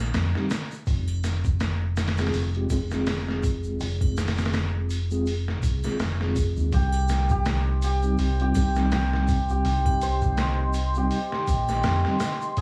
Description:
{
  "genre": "trip hop",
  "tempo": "82 BPM",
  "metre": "4/4",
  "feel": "swing 57% on 16ths",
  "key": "C minor",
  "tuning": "A4 = 440 Hz",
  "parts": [
    { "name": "deep dub fingered electric bass", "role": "bass", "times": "0.0-12.6 s", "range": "F1 to F2", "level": "-28 LUFS", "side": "equal", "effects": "none" },
    { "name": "trip hop sampler-style drum kit", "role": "drums", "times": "0.1-12.6 s", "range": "hi-hat, kick drum, snare drum", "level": "-30 LUFS", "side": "equal", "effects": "none" },
    { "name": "tube shaker and triangle", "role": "percussion", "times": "0.1-12.6 s", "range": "none", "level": "-47 LUFS", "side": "equal", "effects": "none" },
    { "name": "mellow tine electric piano", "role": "accompaniment", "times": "0.4-12.2 s", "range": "G3 to Ab4", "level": "-32 LUFS", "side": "equal", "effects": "tremolo, tape echo" },
    { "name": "hammered dulcimer", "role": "melody", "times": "6.7-12.6 s", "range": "G4 to C5", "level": "-31 LUFS", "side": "equal", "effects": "tape echo" },
    { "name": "dark analog pad", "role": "sustained chords", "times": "7.7-12.6 s", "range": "G4 to C6", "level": "-38 LUFS", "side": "equal", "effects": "chorus, phaser" }
  ],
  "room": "light reverb, digital ambience",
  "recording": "vinyl crackle, small room ambience",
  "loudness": "-25 LUFS",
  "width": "mono",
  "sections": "0.0-12.6 A section",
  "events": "none",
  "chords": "0.0 Cm; 0.9 Fm; 6.7 Cm",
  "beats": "0.14 | 0.87 1.60 2.33 3.06 | 3.79 4.53 5.26 5.99 | 6.72 7.45 8.19 8.92 | 9.65 10.38 11.11 11.84 | 12.57"
}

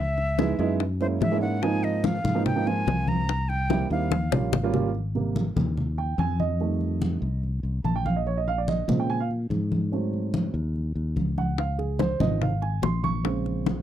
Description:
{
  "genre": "Afro-Cuban jazz",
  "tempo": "145 BPM",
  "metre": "4/4",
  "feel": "straight",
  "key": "Ab major from 4.9 s",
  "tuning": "A4 = 440 Hz",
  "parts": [
    { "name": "breathy bright concert flute", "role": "melody", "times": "0.0-4.7 s", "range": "C5 to Bb5", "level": "-30 LUFS", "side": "equal", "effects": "none" },
    { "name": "fingered electric bass", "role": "bass", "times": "0.0-13.8 s", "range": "Ab1 to Bb2", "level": "-27 LUFS", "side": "left 1 dB", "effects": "none" },
    { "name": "bongos", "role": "percussion", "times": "0.2-4.8, 11.6-13.8 s", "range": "none", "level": "-29 LUFS", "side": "left 12 dB", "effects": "none" },
    { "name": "congas", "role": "percussion", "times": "0.2-13.8 s", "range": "none", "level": "-29 LUFS", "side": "left 1 dB", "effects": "none" },
    { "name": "dark upright piano", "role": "accompaniment", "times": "0.4-13.8 s", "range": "C3 to Db6", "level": "-28 LUFS", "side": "right 7 dB", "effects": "none" }
  ],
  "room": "light reverb",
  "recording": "dry, close 1970s-style studio recording",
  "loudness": "-23 LUFS",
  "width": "side -11 dB against mid",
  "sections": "0.0-4.9 A section; 4.9-13.8 B section",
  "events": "drum fill 4.1-4.9; upright piano solo 4.9-13.8",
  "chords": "0.0 Dbm7; 0.8 Gb9; 1.6 Ab69; 3.3 C7; 4.1 Eb9; 4.9 Abmaj9; 6.6 F7; 8.3 Bbm9; 9.9 Ab7b9; 11.6 Dbmaj9; 13.2 Bbm9",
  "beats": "0.39 0.80 1.22 | 1.63 2.04 2.46 2.87 | 3.29 3.70 4.12 4.53 | 4.95 5.36 5.77 6.19 | 6.60 7.02 7.43 7.85 | 8.26 8.68 9.09 9.51 | 9.92 10.34 10.75 11.17 | 11.58 12.00 12.41 12.83 | 13.24 13.66"
}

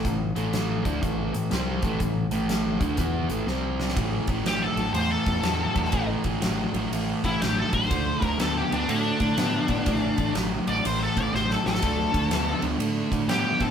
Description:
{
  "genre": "blues rock power trio and southern rock",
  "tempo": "122 BPM",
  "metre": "4/4",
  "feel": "swing 64% on 8ths",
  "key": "A minor",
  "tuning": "A4 = 440 Hz",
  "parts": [
    { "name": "fuzz guitar", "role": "riff", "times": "0.0-13.7 s", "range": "A2 to E4", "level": "-26 LUFS", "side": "right 1 dB", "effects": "distortion" },
    { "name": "growling picked electric bass", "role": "bass", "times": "0.0-13.7 s", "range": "A1 to A2", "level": "-31 LUFS", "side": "equal", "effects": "overdrive" },
    { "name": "huge arena drum kit", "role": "drums", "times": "0.0-13.7 s", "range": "hi-hat, kick drum, ride cymbal, snare drum", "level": "-29 LUFS", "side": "equal", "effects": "none" },
    { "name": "octave-fuzz lead guitar", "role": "melody", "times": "4.5-13.7 s", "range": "D4 to D5", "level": "-27 LUFS", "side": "left 2 dB", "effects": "wah, distortion" }
  ],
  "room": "moderate stone room reverb, RT60 1.3 s",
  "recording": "band playing live in one room",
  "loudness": "-23 LUFS",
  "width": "side -8 dB against mid",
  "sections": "0.0-4.0 A section; 4.0-13.7 B section",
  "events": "drum fill 3.5-4.0, 11.3-11.8; lead electric guitar solo 4.0-13.7",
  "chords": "0.0 Am; 3.5 C5; 4.0 A5; 7.9 D5; 9.9 A5; 11.8 D5",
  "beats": "| 0.04 0.53 1.02 1.51 | 2.01 2.50 2.99 3.48 | 3.97 4.46 4.95 5.44 | 5.93 6.43 6.92 7.41 | 7.90 8.39 8.88 9.37 | 9.86 10.35 10.84 11.33 | 11.82 12.31 12.80 13.29"
}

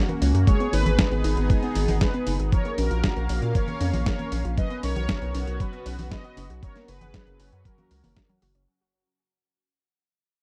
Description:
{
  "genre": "italo disco",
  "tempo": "117 BPM",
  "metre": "4/4",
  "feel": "straight",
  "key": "unclear",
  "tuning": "A4 = 443 Hz",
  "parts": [
    { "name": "lush unison pad", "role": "sustained chords", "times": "0.0-8.7 s", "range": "F#3 to E#5", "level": "-36 LUFS", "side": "equal", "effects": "chorus, phaser" },
    { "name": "warbly dusty pluck", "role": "arpeggios", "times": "0.0-8.6 s", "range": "E#3 to A#4", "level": "-36 LUFS", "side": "equal", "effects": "chorus, tape echo" },
    { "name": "dusty soul sampler-style drum kit", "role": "drums", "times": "0.1-8.7 s", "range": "congas, hi-hat, snare drum", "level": "-32 LUFS", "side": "equal", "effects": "overdrive" },
    { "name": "round analog bass", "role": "bass", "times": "0.2-8.7 s", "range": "F#1 to A#2", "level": "-27 LUFS", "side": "equal", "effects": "none" },
    { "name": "mellow synth brass", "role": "melody", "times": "0.5-8.4 s", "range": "D#4 to D#5", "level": "-34 LUFS", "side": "equal", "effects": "chorus, cassette tape, tape echo" },
    { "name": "electronic kick drum", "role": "drums", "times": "0.5-8.3 s", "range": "none", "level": "-26 LUFS", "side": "equal", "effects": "overdrive" }
  ],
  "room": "little or no reverb",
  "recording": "dry, close 1970s-style studio recording",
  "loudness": "-24 LUFS",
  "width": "mono",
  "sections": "0.0-8.7 A section",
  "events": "fade-out 0.5-8.7",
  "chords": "0.5 G#m; 2.5 A#m; 4.6 Bsus2; 6.6 F#",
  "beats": "| 0.47 0.99 1.50 2.01 | 2.52 3.04 3.55 4.06 | 4.58 5.09 5.60 6.12 | 6.63 7.14 7.65 8.17"
}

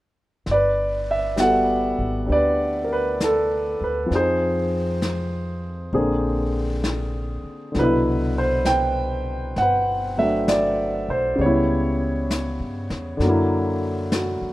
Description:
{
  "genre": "jazz ballad",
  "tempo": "66 BPM",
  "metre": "4/4",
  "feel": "swing 66% on 8ths",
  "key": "G major",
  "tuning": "A4 = 440 Hz",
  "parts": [
    { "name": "warm concert grand piano", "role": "accompaniment", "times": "0.5-14.5 s", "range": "B2 to G5", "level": "-20 LUFS", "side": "equal", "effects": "none" },
    { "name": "upright bass", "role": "bass", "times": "0.5-14.5 s", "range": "G1 to G2", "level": "-27 LUFS", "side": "equal", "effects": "none" },
    { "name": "jazz brush drum kit", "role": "drums", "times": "0.5-14.5 s", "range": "brushed snare drum, hi-hat, snare drum", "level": "-30 LUFS", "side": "left 1 dB", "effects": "none" }
  ],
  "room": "light reverb",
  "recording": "rough home demo mix",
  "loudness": "-19 LUFS",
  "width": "side -16 dB against mid",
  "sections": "0.5-14.5 A section",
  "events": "none",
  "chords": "0.5 Gmaj9; 4.1 Fm7; 5.9 Bb9; 7.7 Cmaj9#11; 11.4 C#m7b5; 13.2 F#7b13",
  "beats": "| 0.47 1.39 2.29 3.20 | 4.11 5.02 5.93 6.84 | 7.75 8.65 9.56 10.47 | 11.38 12.29 13.21 14.12"
}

